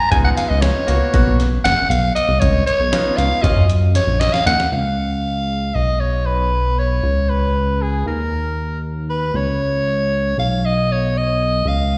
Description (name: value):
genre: progressive instrumental, band music in an uneven meter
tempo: 234 BPM (eighths)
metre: 9/8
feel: straight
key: Db mixolydian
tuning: A4 = 438 Hz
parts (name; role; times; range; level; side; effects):
- raspy soprano saxophone; melody; 0.0-12.0 s; Ab4 to Bb5; -22 LUFS; equal; slapback echo, delay
- bright grand piano; accompaniment; 0.1-3.6 s; Gb3 to Gb4; -26 LUFS; equal; slapback echo
- chorused synth bass; bass; 0.1-12.0 s; Gb1 to Gb2; -20 LUFS; equal; none
- dusty soul sampler-style drum kit; drums; 0.1-4.7 s; hi-hat, kick drum, snare drum; -24 LUFS; equal; none
room: light reverb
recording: live gig heard through the venue's PA, recital hall reverb, nothing above 11.0 kHz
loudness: -18 LUFS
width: mono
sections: 0.0-4.7 A section; 4.7-12.0 B section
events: soprano saxophone solo 0.0-4.7; drum fill 4.0-4.7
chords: 0.1 Db7; 1.1 Gbadd11; 2.4 Db7; 3.4 Ebm7; 4.7 Db; 5.7 Cbadd9; 7.0 Abmadd11/Db; 8.1 Eb5; 9.3 N.C.; 10.4 Cbadd9